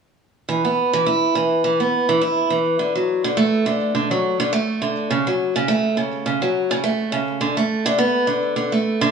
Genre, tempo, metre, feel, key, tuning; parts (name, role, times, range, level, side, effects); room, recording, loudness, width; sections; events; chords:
folktronica; 104 BPM; 4/4; swing 56% on 16ths; A4 = 440 Hz
picked acoustic archtop guitar; solo; 0.5-9.1 s; C#3 to E4; -17 LUFS; right 1 dB; vintage 12-bit sampler grit
moderate echo chamber reverb, RT60 1.8 s; small room ambience; -18 LUFS; side -6 dB against mid
0.5-9.1 A section